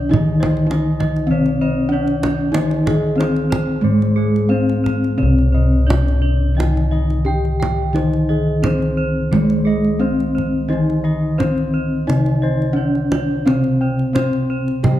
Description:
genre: Javanese gamelan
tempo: 87-103 BPM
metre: 4/4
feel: straight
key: C pelog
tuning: A4 = 443 Hz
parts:
  - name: gamelan-type bronze metallophone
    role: melody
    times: 0.0-15.0 s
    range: Ab3 to G4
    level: -21 LUFS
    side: left 1 dB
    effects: none
  - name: gamelan-type bronze metallophone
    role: accompaniment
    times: 0.0-15.0 s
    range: C3 to Ab3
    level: -21 LUFS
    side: equal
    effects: none
  - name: gamelan-type bronze metallophone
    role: arpeggios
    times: 0.0-15.0 s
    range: Ab4 to G5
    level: -28 LUFS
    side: right 5 dB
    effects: none
  - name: gamelan-type bossed gongs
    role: bass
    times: 0.0-15.0 s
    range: C2 to Eb4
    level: -19 LUFS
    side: left 1 dB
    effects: none
  - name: gamelan-type bossed gongs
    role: arpeggios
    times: 0.1-15.0 s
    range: Ab4 to G5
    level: -28 LUFS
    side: left 4 dB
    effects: none
  - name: kendang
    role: percussion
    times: 0.1-15.0 s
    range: none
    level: -24 LUFS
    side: right 2 dB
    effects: none
room: wet recital hall reverb, RT60 1.4 s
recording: dark, warm production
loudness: -15 LUFS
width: side -13 dB against mid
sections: 0.0-5.2 A section; 5.2-15.0 B section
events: none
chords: none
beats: | 0.12 0.71 1.31 1.92 | 2.55 3.19 3.84 4.51 | 5.19 5.88 6.57 7.26 | 7.95 8.64 9.33 10.02 | 10.71 11.40 12.09 12.78 | 13.47 14.16 14.85

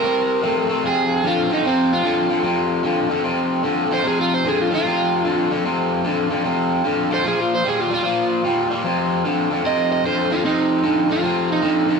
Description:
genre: blues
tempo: 150 BPM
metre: 4/4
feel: swing 65% on 8ths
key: unclear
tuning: A4 = 438 Hz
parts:
  - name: overdriven semi-hollow guitar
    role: melody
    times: 0.0-12.0 s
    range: C4 to Eb5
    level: -20 LUFS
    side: right 2 dB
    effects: none
  - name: overdriven electric guitar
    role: riff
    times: 0.0-12.0 s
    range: F2 to A3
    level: -19 LUFS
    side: left 1 dB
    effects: none
room: moderate stone room reverb, RT60 0.9 s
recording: band playing live in one room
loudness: -17 LUFS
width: side -5 dB against mid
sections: 0.8-12.0 A section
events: none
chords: 0.0 C5; 0.8 F5; 7.2 Bb5; 8.8 F5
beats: 0.03 0.43 | 0.83 1.23 1.64 2.04 | 2.44 2.84 3.24 3.64 | 4.04 4.44 4.84 5.24 | 5.64 6.04 6.45 6.84 | 7.25 7.64 8.04 8.44 | 8.84 9.24 9.64 10.04 | 10.43 10.83 11.23 11.62

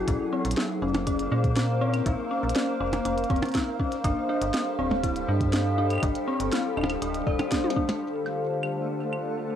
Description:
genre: IDM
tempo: 121 BPM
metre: 4/4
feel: straight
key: unclear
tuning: A4 = 442 Hz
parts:
  - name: glassy FM pad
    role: sustained chords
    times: 0.0-9.6 s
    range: D3 to F5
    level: -29 LUFS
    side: left 1 dB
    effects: ensemble chorus, built-in reverb, cassette tape
  - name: dark detuned synth bell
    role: arpeggios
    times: 0.0-7.8 s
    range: C4 to D5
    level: -29 LUFS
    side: left 1 dB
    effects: chorus, phaser, cassette tape, analog delay
  - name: metallic FM bass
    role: bass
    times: 0.0-7.4 s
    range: D1 to Bb2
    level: -29 LUFS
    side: equal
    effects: none
  - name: electronic kick drum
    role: drums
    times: 0.1-7.9 s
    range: none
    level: -29 LUFS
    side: equal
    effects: overdrive, studio ambience, cassette tape
  - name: glitchy drum kit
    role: drums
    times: 0.1-9.2 s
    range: claves, hi-hat, percussion blips, snare drum, toms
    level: -30 LUFS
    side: right 1 dB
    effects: overdrive, studio ambience, cassette tape, tape echo
  - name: backwards swelling texture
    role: texture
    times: 8.5-9.6 s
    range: A3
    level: -39 LUFS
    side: right 1 dB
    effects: built-in reverb, cassette tape
room: wet studio reverb, RT60 0.5 s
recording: home recording on cassette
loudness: -24 LUFS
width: side -9 dB against mid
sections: 0.0-8.0 A section; 8.0-9.6 B section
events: drum fill 7.6-8.0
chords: 0.1 Bbmadd9; 4.0 G7sus4; 8.0 Dm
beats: | 0.08 0.57 1.07 1.56 | 2.06 2.56 3.05 3.55 | 4.04 4.54 5.04 5.53 | 6.03 6.52 7.02 7.51 | 8.01 8.51 9.00 9.50

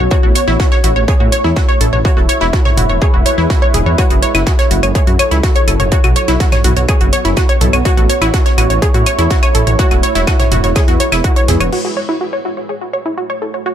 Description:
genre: melodic techno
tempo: 124 BPM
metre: 4/4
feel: straight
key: F# minor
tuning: A4 = 439 Hz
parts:
  - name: deep dark ambient pad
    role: sustained chords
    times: 0.0-13.7 s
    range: F#3 to E5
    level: -20 LUFS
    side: right 2 dB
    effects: chorus, built-in reverb, sidechain pumping
  - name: wide unison pluck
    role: arpeggios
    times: 0.0-13.7 s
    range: E4 to C#5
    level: -16 LUFS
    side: equal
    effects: sidechain pumping, dub echo
  - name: swelling detuned saw bass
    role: bass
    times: 0.0-11.7 s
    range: E1 to A2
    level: -15 LUFS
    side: equal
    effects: sidechain pumping
  - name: electronic kick drum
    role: drums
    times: 0.1-11.3 s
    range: none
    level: -13 LUFS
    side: equal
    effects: distortion, overdrive
  - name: soft brush drum kit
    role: drums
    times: 0.1-11.6 s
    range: hi-hat, snare drum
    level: -29 LUFS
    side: right 3 dB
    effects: none
  - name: techno drum kit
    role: drums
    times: 0.4-11.8 s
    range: claves, crash cymbal, hi-hat, toms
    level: -20 LUFS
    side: equal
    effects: none
room: digital ambience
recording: echo-heavy mix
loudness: -10 LUFS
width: side -10 dB against mid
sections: 0.0-11.7 A section; 11.7-13.7 B section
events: filter sweep on ambient pad 11.7-13.7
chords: 0.1 A; 2.0 E; 4.0 F#m7; 5.9 Bsus2; 7.9 A; 9.8 E; 11.7 F#m7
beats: | 0.11 0.60 1.08 1.56 | 2.05 2.53 3.02 3.50 | 3.98 4.47 4.95 5.43 | 5.92 6.40 6.89 7.37 | 7.86 8.34 8.82 9.31 | 9.79 10.27 10.76 11.24 | 11.73 12.21 12.69 13.18 | 13.66

